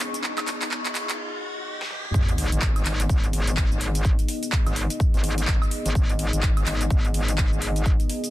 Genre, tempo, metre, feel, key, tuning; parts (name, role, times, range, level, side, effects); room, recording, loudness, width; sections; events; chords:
bass house; 126 BPM; 4/4; swing 60% on 16ths; G# minor; A4 = 439 Hz
dark analog pad; sustained chords; 0.0-8.3 s; B3 to D#5; -33 LUFS; left 2 dB; chorus, sidechain pumping
big-room dance drum kit; drums; 0.0-8.3 s; handclaps, hi-hat, shaker, snare drum, toms, woodblock; -30 LUFS; right 1 dB
riser and sub drop; sound effects; 0.0-4.0 s; -33 LUFS; equal
deep dark ambient pad; texture; 0.0-1.2 s; G#4 to C#6; -37 LUFS; left 3 dB; chorus, built-in reverb, sidechain pumping
metallic wobble bass; bass; 2.1-8.0 s; G#1; -25 LUFS; equal; chorus, sidechain pumping
electronic kick drum; drums; 2.1-8.0 s; -22 LUFS; equal
little or no reverb; dense, heavily limited modern master, high-pass filter; -21 LUFS; side -15 dB against mid
0.0-2.1 A section; 2.1-8.3 B section
build-up 0.0-2.1; drum fill 0.0-1.2, 1.8-2.1; riser 0.0-2.1; filter sweep on analog synth pad 0.0-2.1; break 1.2-2.1; drop 2.1-8.3; impact 2.1-4.0
0.0 G#m